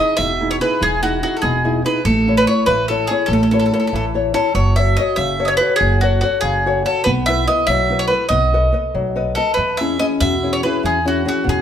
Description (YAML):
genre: italian folk, Italian serenade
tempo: 96 BPM (dotted quarters)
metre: 6/8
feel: straight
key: E major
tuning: A4 = 445 Hz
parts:
  - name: bowl-back mandolin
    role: melody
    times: 0.0-11.6 s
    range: F#4 to E5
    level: -18 LUFS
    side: right 1 dB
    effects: none
  - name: nylon-string guitar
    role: accompaniment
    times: 0.0-11.6 s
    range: B2 to D#5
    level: -19 LUFS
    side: left 2 dB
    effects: none
  - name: upright bass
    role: bass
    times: 0.2-11.6 s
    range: E1 to E2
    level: -21 LUFS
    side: right 1 dB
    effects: none
room: moderate large studio reverb, RT60 1.2 s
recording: band playing live in one room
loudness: -14 LUFS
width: side -9 dB against mid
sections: 0.0-11.6 A section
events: none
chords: 0.0 Emaj7; 2.1 A; 4.5 F#m; 7.1 B7sus4; 8.3 B7; 9.6 E6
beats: 0.19 | 0.81 1.43 | 2.05 2.67 | 3.29 3.92 | 4.55 5.18 | 5.81 6.43 | 7.06 7.68 | 8.30 8.93 | 9.56 10.20 | 10.83 11.45